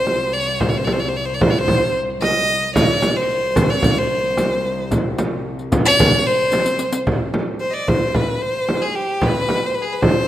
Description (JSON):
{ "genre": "Arabic maqam ensemble", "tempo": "112 BPM", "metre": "4/4", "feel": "straight", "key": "unclear", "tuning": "A4 = 440 Hz", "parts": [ { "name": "clear violin", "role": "melody", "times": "0.0-10.3 s", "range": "G4 to Eb5", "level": "-19 LUFS", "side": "equal", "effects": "none" }, { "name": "warm studio cello section", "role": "drone", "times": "0.0-7.1 s", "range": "C2", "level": "-29 LUFS", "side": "left 1 dB", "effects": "none" }, { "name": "darbuka", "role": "percussion", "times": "0.1-10.2 s", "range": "none", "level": "-27 LUFS", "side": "left 2 dB", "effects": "none" }, { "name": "frame drum", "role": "percussion", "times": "0.1-10.1 s", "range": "none", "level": "-19 LUFS", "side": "right 1 dB", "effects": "none" }, { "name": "riq", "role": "percussion", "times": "2.8-7.1 s", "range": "none", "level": "-28 LUFS", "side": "left 3 dB", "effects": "none" } ], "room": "moderate lush hall reverb, RT60 2.4 s", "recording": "rough home demo mix", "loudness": "-16 LUFS", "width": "side -12 dB against mid", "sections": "0.0-7.1 A section; 7.1-10.3 B section", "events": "drum fill 6.5-7.1", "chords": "none" }